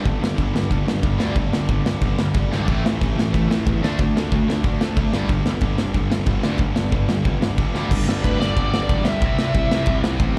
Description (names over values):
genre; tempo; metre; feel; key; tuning
punk rock; 183 BPM; 4/4; straight; unclear; A4 = 440 Hz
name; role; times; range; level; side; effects
distorted electric guitar; riff; 0.0-10.4 s; G2 to D4; -32 LUFS; equal; none
distorted electric guitar; riff; 0.0-7.9 s; G2 to D4; -30 LUFS; equal; none
fuzz guitar; riff; 0.0-10.4 s; G2 to D4; -31 LUFS; equal; distortion, slapback echo
fuzz picked electric bass; bass; 0.0-10.4 s; E1 to E2; -27 LUFS; equal; overdrive
big rock drum kit; drums; 0.1-10.3 s; crash cymbal, kick drum, ride cymbal, snare drum; -24 LUFS; equal; none
bluesy overdriven lead guitar; melody; 8.2-10.0 s; B4 to E5; -27 LUFS; equal; distortion
room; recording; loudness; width
little or no reverb; live gig heard through the venue's PA, club reverb; -20 LUFS; mono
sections
0.0-7.9 A section; 7.9-10.4 B section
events
drum fill 2.5, 7.8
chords
0.0 G5; 2.7 A5; 3.8 D5; 5.1 G5; 9.2 C